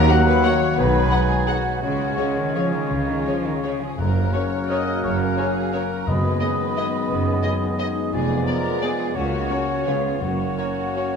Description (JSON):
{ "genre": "classical, orchestral ballroom waltz", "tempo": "172 BPM", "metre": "3/4", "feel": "uneven beats, rubato", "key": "F# major", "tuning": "A4 = 441 Hz", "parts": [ { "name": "clear clarinet", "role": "second line", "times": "0.0-11.2 s", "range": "A#3 to D#4", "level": "-30 LUFS", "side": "left 1 dB", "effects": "none" }, { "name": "dark symphonic violin section", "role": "second line", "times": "0.0-11.2 s", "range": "E#4 to D#5", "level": "-29 LUFS", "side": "left 6 dB", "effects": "none" }, { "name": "mellow hollow silver concert flute", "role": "second line", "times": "0.0-11.2 s", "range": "E#5 to D#6", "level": "-32 LUFS", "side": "left 2 dB", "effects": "none" }, { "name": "warm oboe", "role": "second line", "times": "0.0-11.2 s", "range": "C#5 to G#5", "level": "-32 LUFS", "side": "right 1 dB", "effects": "none" }, { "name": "mellow bassoon", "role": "accompaniment", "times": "0.0-11.2 s", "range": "F#3 to B3", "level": "-33 LUFS", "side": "right 2 dB", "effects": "none" }, { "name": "bright trombone section", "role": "sustained chords", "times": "0.0-11.2 s", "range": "C#3 to B3", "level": "-33 LUFS", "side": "right 2 dB", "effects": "none" }, { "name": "dark French horn section", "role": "sustained chords", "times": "0.0-11.2 s", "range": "G#3 to G#4", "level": "-31 LUFS", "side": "left 2 dB", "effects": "none" }, { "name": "concert harp", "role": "arpeggios", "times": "0.0-11.2 s", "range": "F2 to C#5", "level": "-29 LUFS", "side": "left 9 dB", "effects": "none" }, { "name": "dark trumpet section", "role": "stabs", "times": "0.0-11.2 s", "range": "A#4 to F#5", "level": "-29 LUFS", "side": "equal", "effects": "none" }, { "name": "clear symphonic double bass section", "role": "bass", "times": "0.0-10.5 s", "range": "F1 to C#2", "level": "-27 LUFS", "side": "right 4 dB", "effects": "none" }, { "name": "rich symphonic cello section", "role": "bass", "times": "0.0-10.5 s", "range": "C#2 to E#3", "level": "-27 LUFS", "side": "right 3 dB", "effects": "none" }, { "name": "rich symphonic violin section", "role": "melody", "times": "0.1-11.0 s", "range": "C#5 to F#5", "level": "-31 LUFS", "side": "left 5 dB", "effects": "none" }, { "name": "rich symphonic viola section", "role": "accompaniment", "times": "0.1-11.0 s", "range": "A#3 to B4", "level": "-34 LUFS", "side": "right 2 dB", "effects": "none" }, { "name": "timpani", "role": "percussion", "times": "4.0-6.6, 10.2-10.7 s", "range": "F#2", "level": "-29 LUFS", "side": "left 2 dB", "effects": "none" } ], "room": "wet scoring stage reverb, RT60 1.6 s", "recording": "minimal, uncompressed stereo recording", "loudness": "-19 LUFS", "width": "side -6 dB against mid", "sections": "0.0-11.2 A section", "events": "none", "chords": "0.0 D#m; 0.8 G#m7/B; 1.8 C#; 4.0 F#; 6.1 G#m7/F#; 8.1 Fdim7; 9.2 F#/C#; 9.9 C#7; 10.2 F#" }